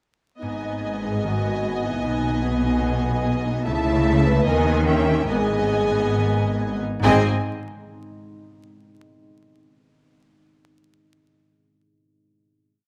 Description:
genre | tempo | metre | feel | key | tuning
classical, dramatic, fast romantic movement for symphony orchestra | 134-149 BPM | 4/4 | straight | G# minor | A4 = 440 Hz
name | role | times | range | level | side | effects
warm symphonic violin section | melody | 0.4-7.3 s | G5 to A5 | -32 LUFS | equal | none
warm symphonic violin section | second line | 0.4-7.3 s | D#5 to E5 | -32 LUFS | equal | none
clear symphonic viola section | accompaniment | 0.4-7.3 s | A3 to C#4 | -30 LUFS | equal | none
dark French horn section | sustained chords | 0.4-7.2 s | B3 to B4 | -28 LUFS | equal | none
concert harp | arpeggios | 0.4-7.3 s | G#2 to D#5 | -32 LUFS | equal | none
rich studio double bass section | bass | 0.4-7.3 s | G#1 to D#2 | -29 LUFS | equal | none
warm symphonic cello section | bass | 0.4-7.3 s | G#2 to D#3 | -28 LUFS | equal | none
room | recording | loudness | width
moderate scoring stage reverb, RT60 1.5 s | vinyl crackle | -22 LUFS | mono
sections
0.4-7.0 A section; 7.0-8.8 final chord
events
slowing down 2.9-7.0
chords
0.4 G#m; 2.0 G#m/B; 3.7 A/C#; 4.5 G#m/D#; 4.9 D#7b9; 5.3 G#m; 7.0 G#

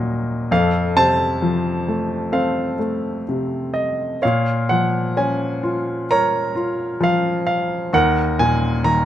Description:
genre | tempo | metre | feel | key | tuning
classical, lyrical solo piano | 65 BPM | 4/4 | rubato | Bb minor | A4 = 440 Hz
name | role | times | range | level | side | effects
warm baby grand piano | solo | 0.0-9.1 s | Eb2 to Bb5 | -17 LUFS | equal | none
room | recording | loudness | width
light reverb | close, detailed microphones | -17 LUFS | side -11 dB against mid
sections
0.0-9.1 A section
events
none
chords
0.0 Ebm; 0.5 F; 4.2 Bbm; 7.9 Ebm

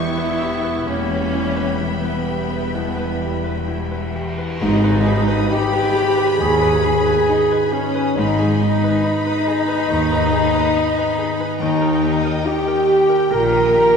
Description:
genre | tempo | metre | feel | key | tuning
cinematic, emotional film score for orchestra | 63-70 BPM | 4/4 | rubato | G# harmonic minor | A4 = 440 Hz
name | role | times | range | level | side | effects
warm studio violin section | melody | 0.0-14.0 s | G5 to C#6 | -29 LUFS | left 3 dB | none
clear clarinet | second line | 0.0-14.0 s | G3 to A#4 | -27 LUFS | left 1 dB | none
mellow hollow concert flute | second line | 0.0-14.0 s | B4 to A#5 | -28 LUFS | left 1 dB | none
warm studio violin section | second line | 0.0-14.0 s | D#5 to D#6 | -33 LUFS | equal | none
bright grand piano | accompaniment | 0.0-14.0 s | D#2 to B4 | -27 LUFS | left 2 dB | none
rich studio viola section | accompaniment | 0.0-14.0 s | B3 to A#4 | -26 LUFS | right 1 dB | none
mellow French horn section | sustained chords | 0.0-14.0 s | G3 to A#4 | -20 LUFS | equal | none
concert harp | arpeggios | 0.0-14.0 s | G#2 to G5 | -27 LUFS | left 5 dB | none
clear studio double bass section | bass | 0.0-14.0 s | E1 to D#2 | -26 LUFS | right 1 dB | none
warm studio cello section | bass | 0.0-14.0 s | D#2 to A#2 | -25 LUFS | right 2 dB | none
cymbal swell and tam-tam | percussion | 0.9-8.1 s | none | -31 LUFS | left 2 dB | none
room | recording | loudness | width
wet scoring stage reverb, RT60 1.7 s | heard from further back in the room | -16 LUFS | side -6 dB against mid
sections
0.0-4.6 A section; 4.6-14.0 B section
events
band accent 4.6-5.5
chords
0.0 Em; 4.6 G#m; 11.6 D#

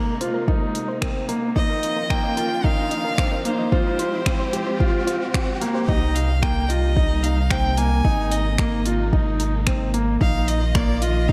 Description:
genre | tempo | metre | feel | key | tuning
piano and strings electronica | 111 BPM | 4/4 | straight | C minor | A4 = 440 Hz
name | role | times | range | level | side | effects
rich studio string section | sustained chords | 0.0-11.3 s | C3 to G4 | -32 LUFS | equal | none
clear concert grand piano | riff | 0.0-11.3 s | Bb3 to G4 | -28 LUFS | equal | none
warm sub bass | bass | 0.0-11.3 s | F1 to C2 | -24 LUFS | equal | sidechain pumping, high-pass filter
riser | sound effects | 0.9-5.9 s | none | -36 LUFS | equal | none
soft round pluck | arpeggios | 0.2-5.8 s | Bb4 to F5 | -35 LUFS | equal | chorus, cassette tape, sidechain pumping, tape echo
deep house drum kit | drums | 0.2-11.1 s | finger snaps, hi-hat | -32 LUFS | equal | overdrive, high-pass filter on hats, high-pass filter on snare, high-pass filter on room
electronic kick drum | drums | 0.5-11.3 s | none | -24 LUFS | equal | overdrive
clear violin | melody | 1.6-11.3 s | C5 to Ab5 | -30 LUFS | equal | none
room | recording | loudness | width
moderate concert hall reverb, RT60 2.0 s | dark, warm production | -21 LUFS | mono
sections
0.0-5.9 A section; 5.9-11.3 B section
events
build-up 0.0-5.9; filter sweep on string section 0.0-5.9; riser 0.9-5.9; drop 5.9-11.3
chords
0.0 Abadd9; 1.6 Bbsus4; 3.7 Fmadd9; 5.9 Cm7; 8.0 Abadd9; 10.2 Bbsus4

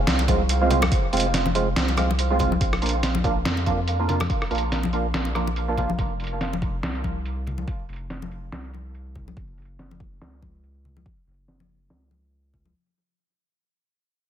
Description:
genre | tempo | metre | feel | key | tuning
deep dubstep | 142 BPM | 4/4 | swing 57% on 16ths, half-time | F phrygian | A4 = 439 Hz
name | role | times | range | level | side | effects
saturated sub bass | bass | 0.0-12.7 s | F1 to F2 | -26 LUFS | equal | none
trip hop sampler-style drum kit | drums | 0.1-12.6 s | hi-hat, rim click, snare drum | -28 LUFS | right 1 dB | low-pass filter on hats, low-pass filter on snare, low-pass filter on toms
congas | percussion | 0.1-12.7 s | none | -32 LUFS | left 6 dB | dub echo
percussive organ stab | stabs | 0.3-5.9 s | Ab3 to F4 | -26 LUFS | right 3 dB | ensemble chorus, cassette tape, dub echo
electronic kick drum | drums | 0.3-12.6 s | none | -26 LUFS | equal | none
room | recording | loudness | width
light reverb | none | -21 LUFS | side -9 dB against mid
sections
0.0-12.7 A section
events
fade-out 0.0-12.7; filter sweep on drum 0.0-12.7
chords
0.0 Fm; 2.6 Bb; 6.0 F5; 9.4 Gb5

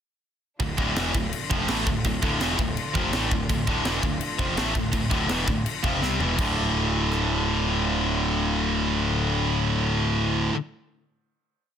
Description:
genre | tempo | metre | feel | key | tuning
heavy metal | 166 BPM | 4/4 | straight | D minor | A4 = 440 Hz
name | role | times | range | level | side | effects
warm studio string section | sustained chords | 0.6-10.1 s | D3 to F4 | -38 LUFS | left 1 dB | none
heavy high-gain guitar | riff | 0.6-10.5 s | D2 to C4 | -28 LUFS | right 12 dB | distortion
high-gain distorted guitar | riff | 0.6-10.6 s | D2 to C4 | -27 LUFS | left 8 dB | distortion
fuzz picked electric bass | bass | 0.6-10.5 s | D1 to C2 | -29 LUFS | equal | overdrive
tight metal drum kit | drums | 0.6-7.2 s | crash cymbal, kick drum, rim click, snare drum, toms | -28 LUFS | equal | none
room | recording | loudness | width
little or no reverb | dense, heavily limited modern master | -22 LUFS | side -8 dB against mid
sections
0.6-6.4 riff; 6.4-9.3 final chord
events
drum fill 6.0-6.4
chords
0.6 Dm

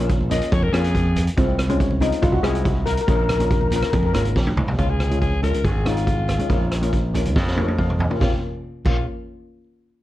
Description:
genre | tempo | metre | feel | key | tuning
calypso | 140 BPM | 4/4 | straight | Bb minor | A4 = 439 Hz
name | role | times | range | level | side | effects
steel pan | melody | 0.0-4.2 s | C4 to Bb4 | -24 LUFS | left 3 dB | digital delay
steel pan | accompaniment | 0.0-9.1 s | Ab3 to F5 | -27 LUFS | left 2 dB | none
modern bright fingered electric bass | bass | 0.0-9.1 s | Ab1 to F2 | -22 LUFS | equal | none
street-band drum kit | drums | 0.1-9.0 s | crash cymbal, hi-hat, kick drum, rim click, snare drum, toms | -23 LUFS | equal | none
congas | percussion | 0.2-9.1 s | none | -29 LUFS | right 3 dB | none
raspy alto saxophone | second line | 0.3-1.3, 4.8-9.1 s | F4 to Eb5 | -27 LUFS | left 4 dB | none
room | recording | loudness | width
light reverb | worn, warbling old tape, cassette tape, warbly pitch drift | -18 LUFS | side -15 dB against mid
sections
0.0-4.8 A section; 4.8-8.2 B section; 8.2-9.9 C section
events
drum fill 4.3-4.8, 7.4-8.2; steel pan fill 7.4-8.2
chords
0.0 Bbm7; 1.4 Fm/C; 3.1 Bbm; 4.8 Db; 6.5 Bbm

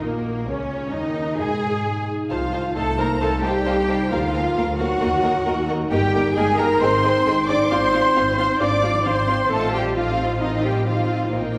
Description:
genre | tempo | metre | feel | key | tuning
classical, dramatic, fast romantic movement for symphony orchestra | 133 BPM | 4/4 | straight | Eb minor | A4 = 440 Hz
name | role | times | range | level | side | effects
warm symphonic violin section | melody | 0.0-11.6 s | Bb4 to D6 | -32 LUFS | equal | none
mellow clarinet | second line | 0.0-11.6 s | Bb3 to D5 | -30 LUFS | equal | none
mellow hollow silver concert flute | second line | 0.0-11.6 s | Bb4 to D6 | -29 LUFS | equal | none
rich symphonic violin section | second line | 0.0-11.6 s | Bb3 to Bb5 | -36 LUFS | equal | none
warm symphonic viola section | accompaniment | 0.0-11.6 s | Bb3 to C5 | -31 LUFS | equal | none
dark French horn section | sustained chords | 0.0-11.6 s | Bb2 to D4 | -30 LUFS | equal | none
concert harp | arpeggios | 0.0-11.6 s | G2 to Eb5 | -30 LUFS | equal | none
clear symphonic double bass section | bass | 0.0-11.6 s | G1 to Ab2 | -30 LUFS | equal | none
rich symphonic cello section | bass | 0.0-11.6 s | Bb3 to D5 | -28 LUFS | equal | none
room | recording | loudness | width
wet concert hall reverb, RT60 2.0 s | recorded in a church or concert hall | -21 LUFS | mono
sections
0.0-11.6 A section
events
none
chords
0.5 Eb7/Db; 1.4 Abm; 2.3 F7/C; 4.1 Bb/D; 5.0 Ebm; 5.9 Eb/G; 6.8 Abmaj7; 7.7 Fm/Ab; 9.5 F7/A

